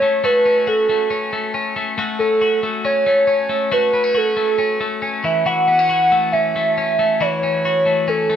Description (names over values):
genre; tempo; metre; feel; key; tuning
indie pop; 138 BPM; 4/4; straight; unclear; A4 = 437 Hz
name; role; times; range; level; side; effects
warbly nostalgic lead; melody; 0.0-8.4 s; A4 to F#5; -16 LUFS; right 1 dB; chorus
twelve-string electric guitar; arpeggios; 0.0-8.4 s; E3 to F#4; -21 LUFS; left 3 dB; none
room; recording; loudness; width
moderate studio reverb, RT60 0.6 s; dark, warm production; -15 LUFS; side -9 dB against mid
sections
0.0-8.4 A section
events
none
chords
0.0 A6; 5.2 F#m7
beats
| 0.23 0.67 1.10 1.54 | 1.98 2.41 2.85 3.28 | 3.72 4.16 4.59 5.03 | 5.46 5.90 6.33 6.77 | 7.21 7.64 8.08